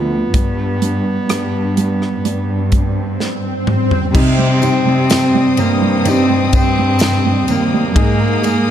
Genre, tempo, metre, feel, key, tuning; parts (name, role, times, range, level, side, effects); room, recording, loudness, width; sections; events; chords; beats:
pop ballad; 63 BPM; 4/4; straight; C minor; A4 = 438 Hz
warm cello; melody; 0.0-8.7 s; Bb3 to C4; -18 LUFS; left 1 dB
felt-muted upright piano; accompaniment; 0.0-8.7 s; C3 to Ab3; -20 LUFS; right 6 dB
warm studio cello section; bass; 0.0-8.7 s; D2 to C3; -18 LUFS; left 1 dB
swell; sound effects; 2.6-4.2 s; -24 LUFS; left 2 dB
modern studio drum kit; drums; 0.3-8.7 s; crash cymbal, hi-hat, kick drum, ride cymbal, rim click, snare drum, toms; -19 LUFS; equal
warm studio string section; sustained chords; 4.1-8.7 s; Bb4 to Eb6; -24 LUFS; left 4 dB
fingerpicked plugged-in steel-string acoustic guitar; arpeggios; 4.1-8.7 s; C3 to Ab4; -23 LUFS; left 4 dB
tambourine; percussion; 4.1-8.7 s; -31 LUFS; left 7 dB
little or no reverb; dark, warm production; -12 LUFS; side -10 dB against mid
0.0-4.2 A section; 4.2-8.7 B section
swell 2.6-4.2; drum fill 3.2-4.2
0.3 G; 4.2 Cm; 8.0 Absus2
| 0.34 1.30 2.25 3.20 | 4.15 5.11 6.06 7.01 | 7.96